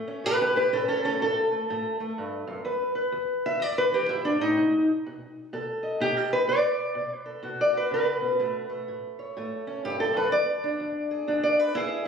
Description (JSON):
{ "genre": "acoustic country blues, solo or duo", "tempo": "125 BPM", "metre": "4/4", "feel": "swing 62% on 8ths", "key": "unclear", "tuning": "A4 = 444 Hz", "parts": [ { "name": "fingerpicked steel-string acoustic guitar", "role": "solo", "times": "0.0-12.1 s", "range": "E2 to E5", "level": "-24 LUFS", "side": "equal", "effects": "none" } ], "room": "wet recital hall reverb, RT60 1.7 s", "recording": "recorded on a phone in the room, studio reverb", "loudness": "-24 LUFS", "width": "side -6 dB against mid", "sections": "0.0-12.1 A section", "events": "steel-string acoustic guitar solo 0.0-12.1", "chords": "0.0 A7; 2.7 E; 4.6 B7; 8.4 A7; 10.3 E7" }